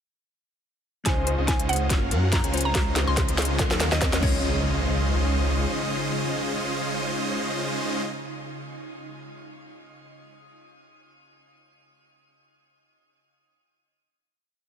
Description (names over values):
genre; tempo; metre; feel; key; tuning
future bass; 142 BPM; 4/4; swing 55% on 16ths, half-time; Db major; A4 = 440 Hz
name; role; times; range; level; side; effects
glassy digital keys; accompaniment; 1.0-10.3 s; Gb3 to Eb5; -37 LUFS; left 4 dB; none
mallet-like synth pluck; melody; 1.1-8.0 s; Db5 to C6; -33 LUFS; right 1 dB; chorus, sidechain pumping, dub echo
ethereal airy pad; sustained chords; 1.8-8.0 s; Db3 to F5; -35 LUFS; equal; ensemble chorus, built-in reverb, sidechain pumping
soft round pluck; arpeggios; 1.1-4.6 s; Bb3 to Db5; -38 LUFS; left 5 dB; none
supersaw chords; riff; 1.1-8.0 s; Gb3 to Ab5; -30 LUFS; equal; sidechain pumping, low-pass filter, dub echo
wide detuned saw bass; bass; 1.1-5.7 s; Gb1 to Gb2; -25 LUFS; equal; chorus, sidechain pumping
electronic kick drum; drums; 1.1-4.3 s; none; -26 LUFS; equal; overdrive
trap drum kit; drums; 1.1-4.3 s; crash cymbal, hi-hat, snare drum; -29 LUFS; equal; none
riser and impact; sound effects; 2.9-8.1 s; none; -35 LUFS; equal; none
room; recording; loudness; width
light reverb; none; -22 LUFS; side -8 dB against mid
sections
1.1-4.4 build; 4.4-7.8 final hit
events
build-up 1.1-4.4; drum fill 1.1-4.4; riser 2.9-4.4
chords
1.1 Dbmaj9; 1.9 Gbmaj7; 2.5 Dbmaj9; 3.6 Ebm9; 4.2 Dbmaj9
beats
| 1.06 1.48 1.90 2.33 | 2.75 3.17 3.59 4.02 | 4.44 4.86 5.28 5.71 | 6.13 6.55 6.97 7.40